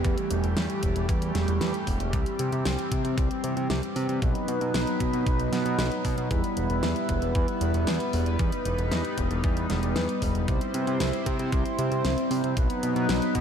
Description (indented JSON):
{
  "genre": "synthwave",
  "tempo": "115 BPM",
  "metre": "4/4",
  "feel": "straight",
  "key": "E harmonic minor",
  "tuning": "A4 = 440 Hz",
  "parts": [
    { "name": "chorused pulse-width pad", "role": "sustained chords", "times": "0.0-13.4 s", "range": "E3 to C5", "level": "-28 LUFS", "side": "equal", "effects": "sidechain pumping" },
    { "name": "fat analog bass", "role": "bass", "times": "0.0-13.4 s", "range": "E1 to C3", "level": "-28 LUFS", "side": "equal", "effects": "none" },
    { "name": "electronic kick drum", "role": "drums", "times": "0.0-13.4 s", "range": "none", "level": "-28 LUFS", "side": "equal", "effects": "studio reverb" },
    { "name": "pop drum kit", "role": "drums", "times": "0.0-13.4 s", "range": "hi-hat, snare drum", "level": "-34 LUFS", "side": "equal", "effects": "studio reverb" },
    { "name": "downlifter", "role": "sound effects", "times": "0.0-2.1 s", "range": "none", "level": "-50 LUFS", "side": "equal", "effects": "none" }
  ],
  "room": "moderate cathedral reverb, RT60 6.4 s",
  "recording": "dreamy mix soaked in reverb",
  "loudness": "-24 LUFS",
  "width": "side -8 dB against mid",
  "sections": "0.0-13.4 A section",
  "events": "none",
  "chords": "0.0 Em; 2.1 C; 4.2 B; 6.3 Em; 10.5 C; 12.6 B",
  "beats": "| 0.05 0.57 1.09 1.61 | 2.13 2.65 3.18 3.70 | 4.22 4.74 5.26 5.79 | 6.31 6.83 7.35 7.87 | 8.39 8.92 9.44 9.96 | 10.48 11.00 11.52 12.05 | 12.57 13.09"
}